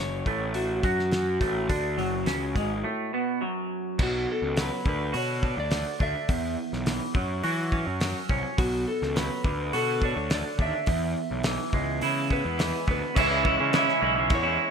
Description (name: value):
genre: indie rock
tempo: 105 BPM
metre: 4/4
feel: straight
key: F# minor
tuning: A4 = 440 Hz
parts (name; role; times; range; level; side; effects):
- electric guitar through a small old amp; melody; 0.0-14.7 s; F#4 to E5; -31 LUFS; equal; diffuse ambient delay
- raw garage guitar; riff; 0.0-14.7 s; E2 to F#4; -28 LUFS; right 2 dB; overdrive, wide subtle chorus
- fuzz picked electric bass; bass; 0.0-14.6 s; F#1 to E3; -31 LUFS; equal; overdrive
- cloth-damped thuddy drum kit; drums; 0.3-14.4 s; crash cymbal, hi-hat, kick drum, snare drum; -29 LUFS; equal; none
room: light reverb, small room reverb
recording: none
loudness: -24 LUFS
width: side -6 dB against mid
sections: 0.0-4.0 A section; 4.0-13.2 B section; 13.2-14.7 C section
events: break 2.9-4.0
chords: 0.0 F#m; 4.0 B5; 4.9 D; 6.3 E5; 7.2 F#5; 8.6 B5; 9.4 D; 10.9 E; 13.2 C#m7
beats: 0.55 1.13 | 1.70 2.28 2.85 3.42 | 4.00 4.57 5.14 5.72 | 6.29 6.86 7.44 8.01 | 8.58 9.15 9.73 10.30 | 10.87 11.45 12.02 12.59 | 13.16 13.73 14.31